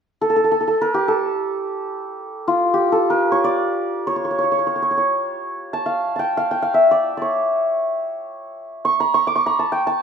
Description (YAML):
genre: persian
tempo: free time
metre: none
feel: none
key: unclear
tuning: A4 = 439 Hz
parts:
  - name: santur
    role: melody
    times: 0.2-10.0 s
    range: F4 to D6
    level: -18 LUFS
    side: equal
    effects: none
room: wet large studio reverb, RT60 1.2 s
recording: band playing live in one room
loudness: -17 LUFS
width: side -7 dB against mid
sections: 0.0-10.0 A section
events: none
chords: none